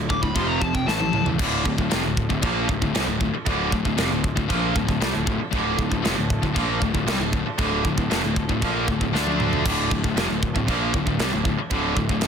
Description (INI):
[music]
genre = heavy metal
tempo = 116 BPM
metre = 4/4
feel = straight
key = D minor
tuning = A4 = 437 Hz
[part]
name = warm chamber string section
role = sustained chords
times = 0.0-12.3 s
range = A2 to E5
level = -36 LUFS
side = left 1 dB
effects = none
[part]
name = high-gain distorted guitar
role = riff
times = 0.0-12.3 s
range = D2 to D4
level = -26 LUFS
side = left 12 dB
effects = distortion
[part]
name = tight distorted guitar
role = riff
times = 0.0-12.3 s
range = D2 to D4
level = -27 LUFS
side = right 13 dB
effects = distortion
[part]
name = fuzz picked electric bass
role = bass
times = 0.0-12.3 s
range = D1 to D2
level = -27 LUFS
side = right 1 dB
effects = overdrive
[part]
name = high-gain lead guitar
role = melody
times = 0.1-1.2 s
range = G5 to D6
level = -27 LUFS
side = left 3 dB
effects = distortion
[part]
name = modern studio drum kit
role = drums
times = 0.1-12.3 s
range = china cymbal, crash cymbal, kick drum, snare drum, splash cymbal, toms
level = -25 LUFS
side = right 1 dB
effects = none
[sound]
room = little or no reverb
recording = dense, heavily limited modern master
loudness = -20 LUFS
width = side -7 dB against mid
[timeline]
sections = 0.0-1.4 A section; 1.4-12.3 B section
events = lead electric guitar solo 0.0-1.4; drum fill 0.9-1.4, 9.1-9.6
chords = 0.4 F5; 0.9 A5; 1.4 Dm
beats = 0.36 0.88 | 1.39 1.91 2.43 2.94 | 3.46 3.98 4.49 5.01 | 5.53 6.04 6.56 7.07 | 7.59 8.10 8.62 9.13 | 9.65 10.16 10.68 11.19 | 11.71 12.22